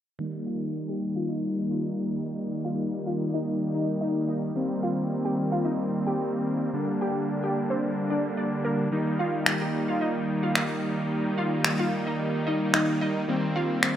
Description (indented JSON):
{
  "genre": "dance-pop",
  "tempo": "110 BPM",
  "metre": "4/4",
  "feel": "straight",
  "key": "Eb major",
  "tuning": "A4 = 440 Hz",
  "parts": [
    { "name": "big bright polysynth", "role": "accompaniment", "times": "0.2-14.0 s", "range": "D3 to Eb4", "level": "-26 LUFS", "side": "equal", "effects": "low-pass filter" },
    { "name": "glassy wavetable pluck", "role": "melody", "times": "0.5-13.7 s", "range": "Bb3 to G5", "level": "-32 LUFS", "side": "equal", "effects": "chorus, low-pass filter, digital delay" },
    { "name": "electronic finger snaps", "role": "drums", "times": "9.5-14.0 s", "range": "none", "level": "-27 LUFS", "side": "equal", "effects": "none" }
  ],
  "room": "moderate lush hall reverb, RT60 2.2 s",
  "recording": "rough home demo mix",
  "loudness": "-25 LUFS",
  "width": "side -10 dB against mid",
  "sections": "0.2-14.0 A section",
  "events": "filter sweep 0.2-14.0",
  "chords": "0.2 Eb; 4.6 Cm7; 6.7 Gm; 8.9 Eb; 13.3 Cm7"
}